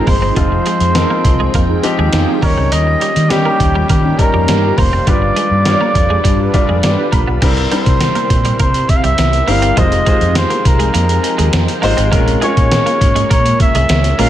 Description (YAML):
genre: 1980s-style pop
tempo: 102 BPM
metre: 4/4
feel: straight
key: unclear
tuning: A4 = 440 Hz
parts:
  - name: clear flugelhorn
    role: melody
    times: 0.0-14.3 s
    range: G4 to F5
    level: -17 LUFS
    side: right 1 dB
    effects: none
  - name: clear concert grand piano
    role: accompaniment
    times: 0.0-14.3 s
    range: F3 to B5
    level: -18 LUFS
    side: left 2 dB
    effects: none
  - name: soft string machine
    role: sustained chords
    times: 0.0-14.3 s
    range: C3 to G5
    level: -22 LUFS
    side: left 1 dB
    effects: phaser, ensemble chorus
  - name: mellow synth brass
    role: stabs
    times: 0.0-7.1 s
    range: Db4 to B4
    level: -24 LUFS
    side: right 3 dB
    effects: chorus, tape echo
  - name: twelve-string electric guitar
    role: riff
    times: 0.1-14.3 s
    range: F3 to Eb4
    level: -24 LUFS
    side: right 4 dB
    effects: analog chorus, tape echo
  - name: vintage muted fingered electric bass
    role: bass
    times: 0.1-14.3 s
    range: F1 to Eb3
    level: -16 LUFS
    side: equal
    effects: none
  - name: trip hop sampler-style drum kit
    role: drums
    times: 0.1-14.3 s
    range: crash cymbal, hi-hat, kick drum, snare drum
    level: -16 LUFS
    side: equal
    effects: gated reverb
room: light reverb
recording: none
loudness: -10 LUFS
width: side -12 dB against mid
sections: 0.0-7.4 A section; 7.4-14.3 B section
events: grand piano fill 6.5-7.4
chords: 0.0 Fm7; 2.4 Eb7; 5.1 G7; 7.4 C7; 9.8 Fm7; 12.1 Bbm7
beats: | 0.36 0.95 1.54 2.13 | 2.72 3.31 3.90 4.48 | 5.07 5.66 6.25 6.84 | 7.42 8.01 8.60 9.19 | 9.78 10.37 10.95 11.54 | 12.13 12.72 13.31 13.89